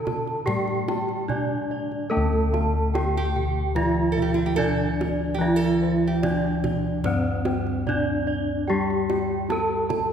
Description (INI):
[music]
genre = Javanese gamelan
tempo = 73 BPM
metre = 4/4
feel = straight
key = D slendro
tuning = A4 = 441 Hz
[part]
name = gamelan-type bronze metallophone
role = melody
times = 0.0-10.1 s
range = C4-40c to A4+20c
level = -27 LUFS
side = equal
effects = none
[part]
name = nylon-string guitar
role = second line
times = 0.0-7.6 s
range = D4 to A4+20c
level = -31 LUFS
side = right 3 dB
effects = slapback echo
[part]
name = gamelan-type bronze metallophone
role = accompaniment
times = 0.0-10.1 s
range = D3 to C4-40c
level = -28 LUFS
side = left 1 dB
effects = none
[part]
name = gamelan-type bossed gongs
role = arpeggios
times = 0.0-9.9 s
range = C5-40c to A5+20c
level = -34 LUFS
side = left 2 dB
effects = none
[part]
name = gamelan-type bronze metallophone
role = arpeggios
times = 0.0-10.1 s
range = C5-40c to A5+20c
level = -32 LUFS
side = right 4 dB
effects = slapback echo
[part]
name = gamelan-type bossed gongs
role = bass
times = 0.0-10.1 s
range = D2 to A4+20c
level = -28 LUFS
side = left 1 dB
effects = none
[part]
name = kendang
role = percussion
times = 0.1-10.1 s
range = none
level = -32 LUFS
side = right 2 dB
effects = none
[sound]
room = wet concert hall reverb, RT60 2.1 s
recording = heard from further back in the room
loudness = -21 LUFS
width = side -8 dB against mid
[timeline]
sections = 0.0-2.1 A section; 2.1-10.1 A section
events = none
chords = none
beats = 0.47 1.29 | 2.12 2.94 3.76 4.58 | 5.41 6.23 7.05 7.87 | 8.69 9.51